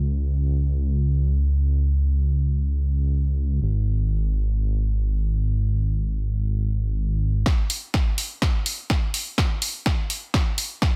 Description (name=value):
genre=melodic techno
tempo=125 BPM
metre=4/4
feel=straight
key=unclear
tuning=A4 = 440 Hz
part: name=dark detuned saw bass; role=bass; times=0.0-7.4 s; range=Ab1 to Db2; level=-23 LUFS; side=equal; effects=sidechain pumping
part: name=electronic kick drum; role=drums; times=7.5-10.9 s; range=none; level=-24 LUFS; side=equal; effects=overdrive
part: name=punchy analog drum machine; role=drums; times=7.5-10.9 s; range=hi-hat, snare drum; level=-29 LUFS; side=equal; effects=high-pass filter on snare, high-pass filter on hats
room=little or no reverb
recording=dense, heavily limited modern master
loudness=-23 LUFS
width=mono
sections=0.0-7.5 A section; 7.5-11.0 B section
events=build-up 7.5-11.0; drum fill 7.5-11.0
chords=none